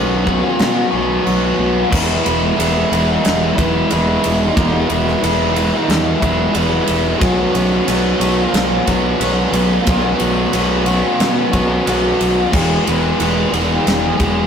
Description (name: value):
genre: rock, shoegaze and dream pop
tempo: 90 BPM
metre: 4/4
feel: straight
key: E major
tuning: A4 = 435 Hz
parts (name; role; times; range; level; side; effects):
- biting overdriven guitar; riff; 0.0-14.5 s; E2 to G#4; -16 LUFS; equal; none
- fuzz fingered electric bass; bass; 0.0-14.4 s; E1 to B2; -19 LUFS; equal; overdrive
- huge arena drum kit; drums; 0.3-14.4 s; crash cymbal, kick drum, ride cymbal, snare drum; -20 LUFS; equal; none
room: wet small room reverb, RT60 0.5 s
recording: rough rehearsal-room recording, warm saturation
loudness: -13 LUFS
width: side -7 dB against mid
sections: 0.0-1.9 A section; 1.9-14.5 B section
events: none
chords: 0.0 Bsus2; 1.9 E; 7.2 Bsus2; 12.5 E